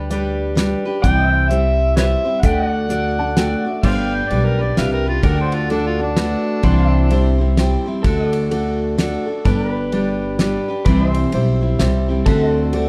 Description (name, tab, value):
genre	honky-tonk and classic country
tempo	128 BPM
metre	3/4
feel	swing 61% on 8ths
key	G major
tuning	A4 = 440 Hz
part	picked steel-string acoustic guitar	accompaniment	0.0-12.9 s	C3 to D5	-23 LUFS	equal	none
part	pedal steel guitar	sustained chords	0.0-12.9 s	A4 to G5	-30 LUFS	equal	none
part	upright bass	bass	0.0-12.9 s	G1 to D2	-22 LUFS	equal	none
part	dark concert grand piano	accompaniment	0.1-12.9 s	F#4 to A5	-28 LUFS	equal	none
part	damped 70s drum kit	drums	0.1-12.9 s	crash cymbal, hi-hat, kick drum, ride cymbal, snare drum	-22 LUFS	equal	none
part	overdriven harmonica	second line	1.0-7.4 s	D4 to G5	-24 LUFS	equal	none
room	moderate large studio reverb, RT60 0.9 s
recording	dark, warm production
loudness	-18 LUFS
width	mono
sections	0.0-3.8 A section; 3.8-12.9 B section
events	harmonica solo 0.0-3.8; grand piano fill 2.9-3.8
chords	0.0 G; 1.0 C; 2.4 D; 3.8 G; 5.2 D; 6.6 C; 8.0 D; 9.4 G; 10.9 C; 12.3 D7